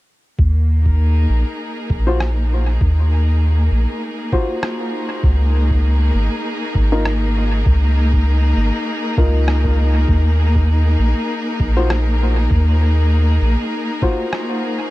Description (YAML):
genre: ambient dub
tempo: 99 BPM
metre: 4/4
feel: swing 55% on 16ths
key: Eb dorian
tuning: A4 = 440 Hz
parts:
  - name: rich chamber string section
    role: sustained chords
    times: 0.4-14.9 s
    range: Bb3 to Bb4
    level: -23 LUFS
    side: left 1 dB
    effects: vintage 12-bit sampler grit
  - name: soft dub sub bass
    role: bass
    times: 0.4-13.6 s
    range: Ab1 to Eb2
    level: -14 LUFS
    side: equal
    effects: none
  - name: electronic kick drum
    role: drums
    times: 0.4-14.2 s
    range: none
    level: -18 LUFS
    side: equal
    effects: none
  - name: warm upright piano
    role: stabs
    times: 2.1-14.9 s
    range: Eb4 to C5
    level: -25 LUFS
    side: left 1 dB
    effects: dub echo
  - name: electronic rim click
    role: drums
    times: 2.2-14.5 s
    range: none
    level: -30 LUFS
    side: equal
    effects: dub echo
room: small room ambience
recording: echo-heavy mix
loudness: -14 LUFS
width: side -18 dB against mid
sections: 0.4-14.9 A section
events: none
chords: 0.4 Ebm69; 5.2 Db6; 10.1 Ebm69